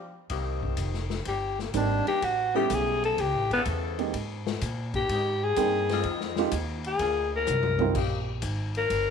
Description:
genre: jazz, big band swing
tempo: 126 BPM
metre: 4/4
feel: swing 69% on 8ths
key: C minor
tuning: A4 = 439 Hz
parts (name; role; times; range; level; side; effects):
- warm saxophone section; sustained chords; 0.3-8.2 s; C#3 to A4; -34 LUFS; left 8 dB; none
- upright bass; bass; 0.3-9.1 s; F1 to Bb2; -32 LUFS; right 1 dB; none
- swinging big-band drum kit; drums; 0.3-9.1 s; crash cymbal, hi-hat, kick drum, ride cymbal, snare drum, toms; -35 LUFS; left 5 dB; none
- growling alto saxophone; melody; 1.3-9.1 s; Bb3 to Bb4; -26 LUFS; left 3 dB; none
- warm upright piano; accompaniment; 1.7-7.9 s; G3 to G5; -30 LUFS; right 14 dB; none
room: light reverb, small room reverb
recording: 1960s-style stereo with parts hard left and right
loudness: -25 LUFS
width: side -6 dB against mid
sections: 0.3-9.1 A section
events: break 0.0-0.3; alto saxophone solo 0.3-9.1; drum fill 7.5-8.0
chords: 0.3 Cm7; 2.2 A9; 4.1 Abmaj7; 6.0 Fm7; 7.0 Bb7; 8.0 Eb6

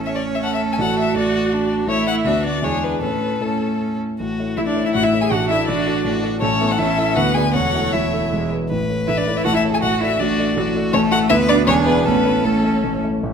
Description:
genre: quick classical-period movement for piano quintet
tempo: 152-167 BPM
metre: 3/4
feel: straight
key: A major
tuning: A4 = 440 Hz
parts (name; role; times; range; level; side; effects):
- clear violin; second line; 0.0-13.0 s; D4 to C#5; -25 LUFS; left 3 dB; none
- rich cello; second line; 0.0-12.8 s; G#3 to G#4; -24 LUFS; right 8 dB; none
- rich viola; accompaniment; 0.0-13.0 s; F#3 to G#4; -25 LUFS; right 4 dB; none
- warm concert grand piano; accompaniment; 0.0-13.3 s; E1 to E5; -21 LUFS; left 1 dB; none
- rich violin; melody; 0.1-12.8 s; A4 to G#5; -22 LUFS; left 4 dB; none
room: wet recital hall reverb, RT60 1.6 s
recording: none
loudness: -16 LUFS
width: side -7 dB against mid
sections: 0.0-4.2 A section; 4.2-13.2 B section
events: none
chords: 0.0 A; 0.8 D/A; 1.9 A; 2.3 Bm/D; 2.6 E7; 3.0 A; 5.3 D/A; 6.4 A; 7.2 Bm/D; 7.5 A/E; 8.3 E; 8.7 A; 9.8 D/A; 10.9 A5; 11.3 Bm/D; 11.7 E7; 12.1 A

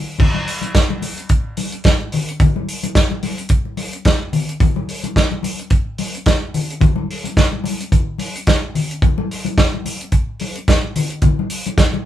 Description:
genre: disco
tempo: 109 BPM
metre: 4/4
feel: swing 56% on 16ths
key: none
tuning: none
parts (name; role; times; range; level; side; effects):
- warm soul drum kit; drums; 0.2-11.9 s; crash cymbal, hi-hat, kick drum, snare drum; -16 LUFS; right 1 dB; none
- congas; percussion; 0.2-12.0 s; none; -22 LUFS; left 4 dB; none
room: moderate studio ambience, RT60 0.5 s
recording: band playing live in one room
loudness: -16 LUFS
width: side -12 dB against mid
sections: 0.2-12.1 A section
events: none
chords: none

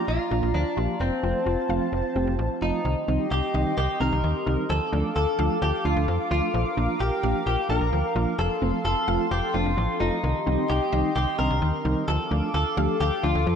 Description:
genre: pop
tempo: 130 BPM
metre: 4/4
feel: straight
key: C dorian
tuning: A4 = 438 Hz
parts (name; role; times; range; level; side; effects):
- direct-recorded clean electric guitar; melody; 0.0-13.6 s; C4 to Bb4; -28 LUFS; equal; lush chorus, ping-pong delay
- mellow FM electric piano; accompaniment; 0.0-13.4 s; Eb3 to G4; -29 LUFS; right 2 dB; chorus, phaser
- chorused pulse-width pad; sustained chords; 0.0-13.6 s; F4 to D6; -30 LUFS; left 1 dB; none
- wide unison pluck; arpeggios; 0.0-13.6 s; Eb3 to F5; -34 LUFS; left 3 dB; analog chorus
- slap-like FM bass; bass; 0.1-13.6 s; F1 to F2; -26 LUFS; equal; none
room: wet plate reverb, RT60 2.7 s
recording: dreamy mix soaked in reverb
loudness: -22 LUFS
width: side -7 dB against mid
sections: 0.0-2.9 A section; 2.9-13.6 B section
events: none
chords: 0.0 Bb; 1.0 F; 2.9 Cm; 4.7 Dm; 6.5 Bb; 8.4 F; 10.2 Cm; 12.1 Dm

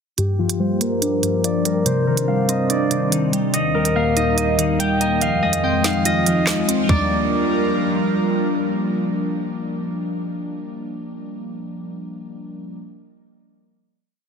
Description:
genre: hip hop, drill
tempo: 143 BPM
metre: 4/4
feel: half-time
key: G phrygian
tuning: A4 = 440 Hz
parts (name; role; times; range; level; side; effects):
- concert harp; melody; 0.2-8.7 s; F4 to G5; -22 LUFS; equal; low-pass filter, ping-pong delay
- glassy digital keys; accompaniment; 0.2-12.8 s; G2 to Eb5; -21 LUFS; left 1 dB; chorus, low-pass filter
- airy breathy pad; sustained chords; 0.2-9.9 s; Eb2 to Bb4; -26 LUFS; right 2 dB; chorus, low-pass filter
- drill drum kit; drums; 0.2-7.0 s; handclaps, hi-hat, kick drum, snare drum, toms; -22 LUFS; right 3 dB; none
room: light reverb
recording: dense, heavily limited modern master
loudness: -17 LUFS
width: side -6 dB against mid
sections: 0.2-6.9 breakdown; 6.9-10.2 final chord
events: filter sweep 0.2-6.9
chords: 0.2 Gm7; 1.9 Cmadd9; 3.5 Eb; 5.2 Fm7; 6.9 Gm7

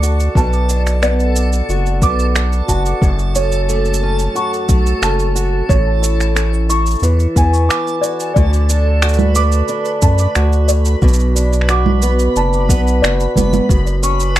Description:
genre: folktronica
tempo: 90 BPM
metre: 4/4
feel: straight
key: D major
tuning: A4 = 440 Hz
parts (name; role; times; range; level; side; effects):
- celesta; second line; 0.0-14.4 s; C#5 to D6; -22 LUFS; right 1 dB; tape echo
- fingerpicked swing-style acoustic guitar; arpeggios; 0.0-14.4 s; F#2 to F#4; -20 LUFS; right 1 dB; low-pass filter, digital delay
- round analog bass; bass; 0.0-14.4 s; F#1 to F#2; -15 LUFS; equal; none
- electronic shaker, finger snaps and congas; drums; 0.0-14.4 s; none; -20 LUFS; right 4 dB; studio ambience
- backwards swelling texture; texture; 0.0-14.4 s; A4 to C#7; -26 LUFS; left 1 dB; built-in reverb
- electronic kick drum; drums; 0.4-13.8 s; none; -14 LUFS; equal; studio ambience
room: light reverb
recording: dark, warm production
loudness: -12 LUFS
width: side -14 dB against mid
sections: 0.0-8.4 A section; 8.4-14.4 B section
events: break 7.7-8.4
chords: 0.4 Bm; 3.0 F#m; 5.7 A; 7.0 Eadd9; 8.4 D; 11.0 Bm; 13.7 F#5

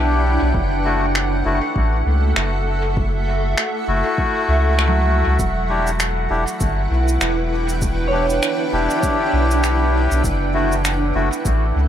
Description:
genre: ambient dub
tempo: 99 BPM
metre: 4/4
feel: swing 58% on 16ths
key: unclear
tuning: A4 = 440 Hz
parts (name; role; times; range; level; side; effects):
- granular cloud pad; sustained chords; 0.0-11.9 s; D4 to G5; -23 LUFS; right 2 dB; built-in reverb
- concert harp; arpeggios; 0.0-10.0 s; F#3 to C#6; -29 LUFS; right 1 dB; low-pass filter, dub echo
- melodica; stabs; 0.0-11.3 s; A3 to G4; -22 LUFS; left 3 dB; vintage 12-bit sampler grit, dub echo
- soft dub sub bass; bass; 0.0-11.9 s; E1 to C#2; -19 LUFS; equal; none
- electronic kick drum; drums; 0.5-11.6 s; none; -23 LUFS; equal; overdrive
- electronic finger snaps and cabasa; drums; 1.2-11.6 s; none; -25 LUFS; equal; overdrive, dub echo
room: light reverb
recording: echo-heavy mix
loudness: -16 LUFS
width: side -10 dB against mid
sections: 0.0-11.9 A section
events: filter sweep on harp 0.0-11.9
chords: 0.0 Em7; 0.5 F#m7; 5.4 Em7; 10.2 F#m7

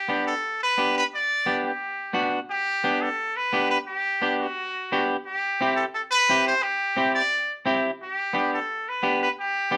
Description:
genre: latin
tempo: 174 BPM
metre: 4/4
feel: straight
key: G major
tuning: A4 = 442 Hz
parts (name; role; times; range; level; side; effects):
- trumpet with straight mute; melody; 0.0-9.8 s; F#4 to D5; -26 LUFS; equal; none
- semi-hollow electric guitar; accompaniment; 0.1-9.8 s; B3 to G4; -27 LUFS; equal; none
room: moderate studio reverb, RT60 0.8 s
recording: none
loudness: -24 LUFS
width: mono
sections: 0.0-2.5 A section; 2.5-9.8 B section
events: none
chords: 0.0 G; 5.3 C; 8.0 G

